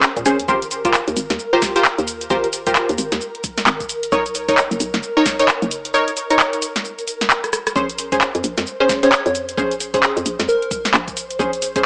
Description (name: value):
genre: UK garage, two-step garage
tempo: 132 BPM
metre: 4/4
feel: swing 60% on 16ths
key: Bb dorian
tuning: A4 = 440 Hz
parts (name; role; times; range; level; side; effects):
- ethereal airy pad; sustained chords; 0.1-11.9 s; Bb4 to C5; -32 LUFS; equal; ensemble chorus, built-in reverb, sidechain pumping
- punchy chord stab; stabs; 0.0-11.9 s; Db4 to C#5; -21 LUFS; equal; chorus, phaser, tape echo
- garage drum kit; drums; 0.0-11.8 s; cabasa, handclaps, hi-hat, rim click, snare drum; -21 LUFS; equal; none
- hollow knocking FM bass; bass; 0.2-11.9 s; F#1 to Bb2; -26 LUFS; equal; sidechain pumping
- electronic kick drum; drums; 0.2-11.8 s; none; -34 LUFS; equal; none
- plucky unison lead; melody; 9.0-10.9 s; Ab4 to Db5; -24 LUFS; equal; tape echo
room: light reverb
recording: dry, gritty hardware recording, transformer saturation, vinyl crackle, small speaker sound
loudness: -19 LUFS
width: mono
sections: 0.0-11.9 A section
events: drum fill 7.4-7.8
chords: 0.5 Abmaj13; 4.1 Bmaj9; 7.8 Bbm9